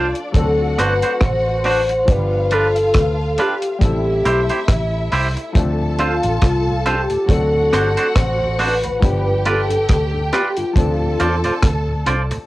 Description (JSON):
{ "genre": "lovers rock reggae", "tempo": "69 BPM", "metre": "4/4", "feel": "swing 57% on 16ths", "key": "D dorian", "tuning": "A4 = 440 Hz", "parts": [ { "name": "warm velvety synth lead", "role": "melody", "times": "0.0-12.1 s", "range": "F4 to C5", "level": "-20 LUFS", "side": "left 1 dB", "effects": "chorus, tape echo" }, { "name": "warm studio string section", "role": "second line", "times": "0.0-12.5 s", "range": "D4 to A5", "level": "-27 LUFS", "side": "equal", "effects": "cassette tape, analog delay" }, { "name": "warm baby grand piano", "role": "accompaniment", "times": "0.0-12.5 s", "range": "F3 to A4", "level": "-28 LUFS", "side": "left 3 dB", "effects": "cassette tape" }, { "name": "twangy electric guitar", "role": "stabs", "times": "0.0-12.4 s", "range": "D4 to D5", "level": "-19 LUFS", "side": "right 2 dB", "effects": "cassette tape" }, { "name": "vintage muted fingered electric bass", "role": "bass", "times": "0.0-12.3 s", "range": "G1 to E2", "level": "-21 LUFS", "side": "equal", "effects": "none" }, { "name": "deep reggae drum kit", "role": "drums", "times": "0.2-12.5 s", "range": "hi-hat, kick drum, rim click", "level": "-18 LUFS", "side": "equal", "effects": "cassette tape" }, { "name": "mellow tonewheel organ", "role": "accompaniment", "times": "5.8-12.4 s", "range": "D2 to G4", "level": "-30 LUFS", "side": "right 1 dB", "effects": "chorus vibrato, slow rotary speaker, cassette tape, analog delay" } ], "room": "light reverb", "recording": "home recording on cassette", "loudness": "-15 LUFS", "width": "side -17 dB against mid", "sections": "0.0-12.5 A section", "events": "none", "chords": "0.3 D7; 2.1 G7; 3.8 Am7; 5.6 Dm7; 7.3 D7; 9.0 G7; 10.8 Dm7" }